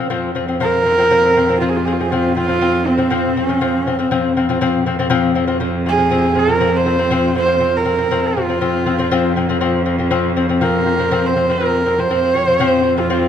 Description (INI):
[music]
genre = mongolian traditional, Mongolian folk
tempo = 120 BPM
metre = 4/4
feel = straight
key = unclear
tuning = A4 = 440 Hz
[part]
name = lute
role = arpeggios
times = 0.0-13.3 s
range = F3 to C4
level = -18 LUFS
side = left 5 dB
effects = none
[part]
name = bright cello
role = drone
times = 0.1-13.3 s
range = F2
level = -21 LUFS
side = right 3 dB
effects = none
[part]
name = rich horsehead fiddle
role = melody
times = 0.6-13.3 s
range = C4 to C5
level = -16 LUFS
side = right 2 dB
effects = none
[sound]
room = wet recital hall reverb, RT60 1.3 s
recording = dark, warm production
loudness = -14 LUFS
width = side -9 dB against mid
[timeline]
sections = 0.1-13.3 A section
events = none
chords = 0.1 F5